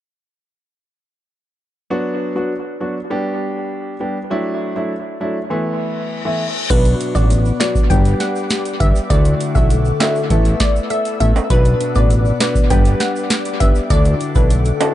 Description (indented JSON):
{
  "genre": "dancehall",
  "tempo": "100 BPM",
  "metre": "4/4",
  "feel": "straight",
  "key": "unclear",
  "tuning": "A4 = 438 Hz",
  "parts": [
    { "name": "clear grand piano", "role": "accompaniment", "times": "1.9-14.9 s", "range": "E3 to B4", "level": "-22 LUFS", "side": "equal", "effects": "dub echo" },
    { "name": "reverse cymbal", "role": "sound effects", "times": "5.9-6.7 s", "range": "none", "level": "-26 LUFS", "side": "left 6 dB", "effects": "none" },
    { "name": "glassy wavetable pluck", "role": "melody", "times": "6.7-14.9 s", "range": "A4 to G5", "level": "-23 LUFS", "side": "equal", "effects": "chorus, dub echo" },
    { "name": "glassy FM pad", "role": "sustained chords", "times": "7.0-14.9 s", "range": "A4 to E6", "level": "-28 LUFS", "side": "left 2 dB", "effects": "ensemble chorus, built-in reverb, sidechain pumping" },
    { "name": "nylon-string guitar", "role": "arpeggios", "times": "6.7-14.9 s", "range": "B2 to A4", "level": "-23 LUFS", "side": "left 7 dB", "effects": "none" },
    { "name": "fat analog bass", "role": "bass", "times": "6.7-14.7 s", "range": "G1 to D2", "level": "-16 LUFS", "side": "equal", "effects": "none" },
    { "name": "booming analog drum machine", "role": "drums", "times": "6.7-14.9 s", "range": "crash cymbal, hi-hat, kick drum, snare drum", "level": "-16 LUFS", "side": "equal", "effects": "none" },
    { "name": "tube shaker and timbales", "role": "percussion", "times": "6.7-14.9 s", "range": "none", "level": "-28 LUFS", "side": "right 6 dB", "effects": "dub echo" }
  ],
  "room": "little or no reverb",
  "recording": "echo-heavy mix, nothing above 10.8 kHz",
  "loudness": "-14 LUFS",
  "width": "side -13 dB against mid",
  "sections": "1.9-6.7 A section; 6.7-14.9 B section",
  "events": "reverse cymbal 5.9-6.7",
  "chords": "1.9 Bm; 3.1 G; 4.3 Dadd9; 5.5 Asus2; 6.7 Bm; 7.9 G; 9.1 Dadd9; 10.3 Asus2; 11.5 Bm; 12.7 G; 13.9 Dadd9"
}